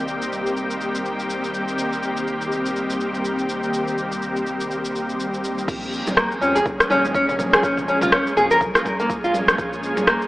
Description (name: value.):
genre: afro house.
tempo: 123 BPM.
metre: 4/4.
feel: swing 57% on 16ths.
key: Bb dorian.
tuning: A4 = 440 Hz.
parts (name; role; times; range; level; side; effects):
ethereal airy pad; sustained chords; 0.0-10.3 s; Eb3 to Ab4; -24 LUFS; equal; ensemble chorus, built-in reverb, sidechain pumping.
round analog bass; bass; 0.0-10.1 s; Ab1 to F2; -37 LUFS; equal; sidechain pumping.
deep house drum kit; drums; 0.1-10.3 s; crash cymbal, rim click, shaker, toms; -22 LUFS; equal; none.
electronic kick drum; drums; 5.7-10.2 s; none; -31 LUFS; equal; none.
congas; percussion; 6.1-10.1 s; none; -30 LUFS; right 1 dB; none.
nylon-string guitar; arpeggios; 6.2-10.2 s; Bb3 to Bb4; -19 LUFS; equal; sidechain pumping, digital delay.
room: moderate lush hall reverb, RT60 1.7 s.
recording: AM radio sound.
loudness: -19 LUFS.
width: side -18 dB against mid.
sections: 0.0-5.7 A section; 5.7-10.3 B section.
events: drop 5.7-10.3.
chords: 0.0 Cm7; 5.7 Bbm7.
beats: 0.32 0.81 1.29 | 1.78 2.27 2.76 3.25 | 3.73 4.22 4.71 5.20 | 5.68 6.17 6.66 7.15 | 7.63 8.12 8.61 9.10 | 9.59 10.07.